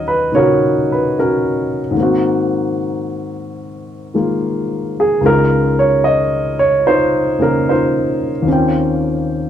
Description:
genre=jazz ballad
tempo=74 BPM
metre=4/4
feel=swing 68% on 8ths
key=Eb minor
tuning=A4 = 439 Hz
part: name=warm baby grand piano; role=solo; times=0.0-9.5 s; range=Db2 to G5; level=-13 LUFS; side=equal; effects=none
room=moderate studio reverb, RT60 0.8 s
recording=none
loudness=-13 LUFS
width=side -10 dB against mid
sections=0.0-9.5 A section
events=none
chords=0.0 Ebm7; 1.9 Ab9; 5.2 Dbadd9; 8.5 Eb13

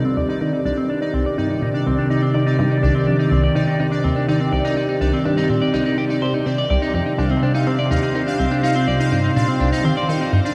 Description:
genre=ambient, sequencer-driven space music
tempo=124 BPM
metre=4/4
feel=straight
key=C minor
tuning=A4 = 440 Hz
part: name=phased analog pad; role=sustained chords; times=0.0-10.5 s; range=C3 to D5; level=-22 LUFS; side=equal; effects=phaser, chorus
part: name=electric guitar at the edge of break-up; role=arpeggios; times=0.0-10.5 s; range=C4 to D5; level=-25 LUFS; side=equal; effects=low-pass filter, tape echo
part: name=tight sequenced synth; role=riff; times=0.0-10.4 s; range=C2 to Eb3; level=-25 LUFS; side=equal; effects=chorus, tape echo
part: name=pulsing gated texture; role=texture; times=0.0-10.5 s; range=D5 to F5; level=-31 LUFS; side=equal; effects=chorus, built-in reverb
room=wet huge ambient reverb, RT60 8.0 s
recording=dark, warm production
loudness=-19 LUFS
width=mono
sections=0.0-10.5 A section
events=filter sweep on clean electric guitar 0.0-10.5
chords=0.0 Cmadd9

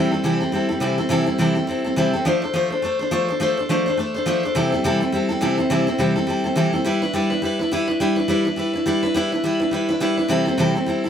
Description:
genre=rock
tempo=209 BPM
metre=4/4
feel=swing 60% on 8ths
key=C major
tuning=A4 = 442 Hz
part: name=picked steel-string acoustic guitar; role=solo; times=0.0-11.1 s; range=C3 to C5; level=-18 LUFS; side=equal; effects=none
room=light reverb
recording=none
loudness=-18 LUFS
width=side -8 dB against mid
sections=0.0-11.1 A section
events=none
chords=0.0 C6; 2.3 F6; 4.6 C6; 6.9 G6; 10.3 C6

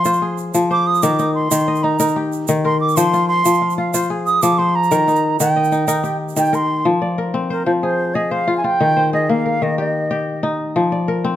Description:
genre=west african traditional, West African string and xylophone music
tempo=123 BPM (dotted quarters)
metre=12/8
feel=straight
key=F dorian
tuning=A4 = 440 Hz
part: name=wooden flute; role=melody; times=0.0-10.4 s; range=Bb4 to Eb6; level=-18 LUFS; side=right 3 dB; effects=none
part: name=kora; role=arpeggios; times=0.0-11.4 s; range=Eb3 to F5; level=-17 LUFS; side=left 2 dB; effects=none
part: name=egg shaker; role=percussion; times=0.0-6.6 s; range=none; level=-26 LUFS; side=right 10 dB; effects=none
room=moderate recital hall reverb, RT60 1.7 s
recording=close, detailed microphones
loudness=-15 LUFS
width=side -12 dB against mid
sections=0.0-6.9 A section; 6.9-11.4 B section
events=flute solo 0.0-6.9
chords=0.0 Fm; 1.0 Eb; 3.0 Fm; 4.9 Eb; 6.9 Fm; 8.8 Eb; 10.8 F5

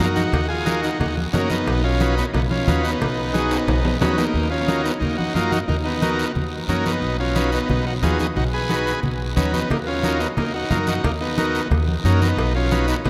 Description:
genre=latin, cumbia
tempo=179 BPM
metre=4/4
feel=straight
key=Eb minor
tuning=A4 = 440 Hz
part: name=overdriven combo organ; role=melody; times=0.0-13.1 s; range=F#3 to B4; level=-26 LUFS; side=equal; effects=none
part: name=combo organ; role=accompaniment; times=0.0-13.0 s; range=Eb4 to B4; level=-28 LUFS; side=equal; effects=spring reverb
part: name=upright bass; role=bass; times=0.0-13.1 s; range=B1 to Gb2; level=-26 LUFS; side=equal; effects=none
part: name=congas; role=percussion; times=0.0-13.1 s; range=none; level=-29 LUFS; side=equal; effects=none
part: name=guiro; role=percussion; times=0.0-13.1 s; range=none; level=-36 LUFS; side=equal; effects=none
part: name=timbales and cowbell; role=percussion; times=0.0-4.3, 9.7-13.1 s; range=none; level=-34 LUFS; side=equal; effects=none
room=wet cathedral reverb, RT60 6.4 s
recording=in a vast, echoing space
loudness=-21 LUFS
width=mono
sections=0.0-4.3 A section; 4.3-13.1 A section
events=drum fill 3.5-4.3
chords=0.0 Ebm; 1.7 B; 4.3 Ebm; 7.0 B; 9.7 Ebm; 12.4 B

